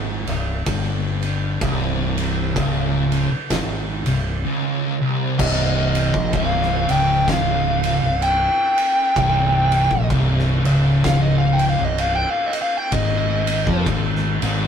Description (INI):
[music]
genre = stoner and doom metal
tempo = 64 BPM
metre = 4/4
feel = swing 59% on 8ths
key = C phrygian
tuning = A4 = 440 Hz
[part]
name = fuzz guitar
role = riff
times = 0.0-14.7 s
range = C2 to F3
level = -24 LUFS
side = right 7 dB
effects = distortion
[part]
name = thick fuzz guitar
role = riff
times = 0.0-14.7 s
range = C2 to F3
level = -24 LUFS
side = left 9 dB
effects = distortion
[part]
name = growling fingered electric bass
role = bass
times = 0.0-14.7 s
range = C1 to F2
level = -24 LUFS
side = equal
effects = overdrive
[part]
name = oversized low-tuned drum kit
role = drums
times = 0.3-14.6 s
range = crash cymbal, kick drum, ride cymbal, snare drum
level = -24 LUFS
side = right 1 dB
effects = none
[part]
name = fuzz lead guitar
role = melody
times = 5.4-13.8 s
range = Eb5 to G5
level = -20 LUFS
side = equal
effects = distortion
[sound]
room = moderate stone room reverb, RT60 1.1 s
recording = rough rehearsal-room recording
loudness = -17 LUFS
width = side -8 dB against mid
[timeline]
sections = 0.0-5.4 A section; 5.4-14.7 B section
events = lead electric guitar solo 5.4-14.7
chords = 0.0 C5; 12.9 Ab5